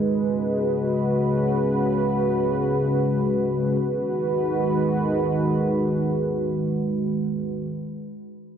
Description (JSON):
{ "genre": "hip hop", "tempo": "free time", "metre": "none", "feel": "none", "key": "G# minor", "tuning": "A4 = 440 Hz", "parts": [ { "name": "dark analog pad", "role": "sustained chords", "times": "0.0-7.7 s", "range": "C#3 to B4", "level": "-21 LUFS", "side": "equal", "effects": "chorus" } ], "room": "moderate huge ambient reverb, RT60 4.2 s", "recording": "dense, heavily limited modern master", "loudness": "-21 LUFS", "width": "side -8 dB against mid", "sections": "0.0-3.8 A section; 3.8-7.7 B section", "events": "none", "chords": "0.0 C#7sus4; 3.8 G#m7" }